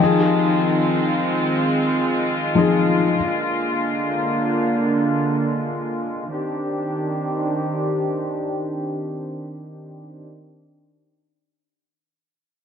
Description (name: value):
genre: hip hop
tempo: free time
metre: none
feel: none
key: C minor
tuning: A4 = 438 Hz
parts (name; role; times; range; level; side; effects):
- felt-muted upright piano; accompaniment; 0.0-3.2 s; F3 to Ab4; -19 LUFS; left 4 dB; low-pass filter
- warm studio string section; sustained chords; 0.0-10.2 s; D3 to G4; -21 LUFS; right 1 dB; low-pass filter
room: light reverb, studio ambience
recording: none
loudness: -19 LUFS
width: side -7 dB against mid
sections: 0.0-6.3 A section; 6.3-9.5 B section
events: filter sweep 0.0-6.3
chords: 0.0 Fm7; 3.2 Bb7; 6.3 Cmadd9